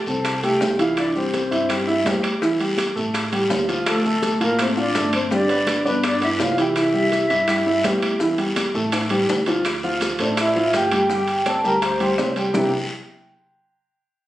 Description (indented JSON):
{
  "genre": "Afro-Cuban jazz",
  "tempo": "166 BPM",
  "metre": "4/4",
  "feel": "straight",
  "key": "C major",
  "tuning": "A4 = 440 Hz",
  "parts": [
    { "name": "vibraphone with soft mallets", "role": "melody", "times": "0.1-12.7 s", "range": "A3 to C6", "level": "-23 LUFS", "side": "equal", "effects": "plate reverb" },
    { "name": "breathy bright shakuhachi", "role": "second line", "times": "0.1-12.7 s", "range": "D4 to A5", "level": "-25 LUFS", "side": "left 1 dB", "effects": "none" },
    { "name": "warm grand piano", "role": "accompaniment", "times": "0.1-12.7 s", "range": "C3 to G5", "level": "-22 LUFS", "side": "right 1 dB", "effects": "none" },
    { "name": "upright bass", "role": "bass", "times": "0.1-12.7 s", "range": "G1 to G2", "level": "-34 LUFS", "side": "equal", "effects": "none" },
    { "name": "bongos", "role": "percussion", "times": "0.1-12.6 s", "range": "none", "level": "-29 LUFS", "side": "left 3 dB", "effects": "none" },
    { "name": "congas", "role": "percussion", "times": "0.1-12.6 s", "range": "none", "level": "-33 LUFS", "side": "left 1 dB", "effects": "none" },
    { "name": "guiro", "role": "percussion", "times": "0.1-12.6 s", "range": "none", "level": "-31 LUFS", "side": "left 2 dB", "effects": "none" },
    { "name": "maracas", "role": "percussion", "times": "0.1-12.6 s", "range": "none", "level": "-39 LUFS", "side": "right 2 dB", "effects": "none" },
    { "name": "timbales", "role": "percussion", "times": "0.2-12.6 s", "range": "none", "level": "-28 LUFS", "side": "right 3 dB", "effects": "none" },
    { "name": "claves", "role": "percussion", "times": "0.3-12.6 s", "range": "none", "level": "-35 LUFS", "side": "right 2 dB", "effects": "none" }
  ],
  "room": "moderate club reverb, RT60 0.5 s",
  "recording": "recorded on a phone in the room, studio reverb, compression",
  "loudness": "-18 LUFS",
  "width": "side -14 dB against mid",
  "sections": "0.0-9.7 A section; 9.7-12.5 B section; 12.5-14.0 C section",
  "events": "drum fill 8.6-9.7",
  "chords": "0.0 F; 1.0 C; 2.4 Emadd11; 3.1 Dmadd11/A; 3.9 Dm; 5.3 G; 6.8 C; 8.2 Emadd11; 8.9 Dmadd11/A; 9.7 Dm7; 11.1 Gsus4; 12.5 C9"
}